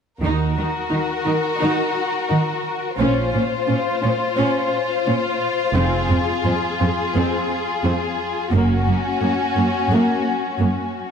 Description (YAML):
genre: cinematic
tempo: 87 BPM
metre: 4/4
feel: straight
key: unclear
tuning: A4 = 440 Hz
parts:
  - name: warm symphonic violin section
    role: melody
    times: 0.2-11.1 s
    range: Gb4 to C5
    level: -24 LUFS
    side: left 5 dB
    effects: none
  - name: clear studio violin section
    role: second line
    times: 0.2-11.1 s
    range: Db4 to Gb4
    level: -24 LUFS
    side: left 3 dB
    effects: none
  - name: rich studio viola section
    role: accompaniment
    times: 0.2-10.7 s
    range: Bb3 to Eb4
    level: -24 LUFS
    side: right 1 dB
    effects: none
  - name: clear symphonic double bass section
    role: bass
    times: 0.2-8.9 s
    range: F1 to Eb2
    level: -24 LUFS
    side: right 3 dB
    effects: none
  - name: rich symphonic cello section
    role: bass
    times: 0.2-10.7 s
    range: F2 to Eb3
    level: -24 LUFS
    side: right 2 dB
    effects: none
room: moderate scoring stage reverb, RT60 2.0 s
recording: dark, warm production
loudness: -18 LUFS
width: side -7 dB against mid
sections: 0.2-11.1 A section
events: none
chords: 0.2 Ebm; 3.0 Bbmadd9; 5.8 Fm; 8.5 Gb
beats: | 0.22 0.91 1.61 2.30 | 2.99 3.69 4.38 5.07 | 5.76 6.46 7.15 7.84 | 8.53 9.23 9.92 10.61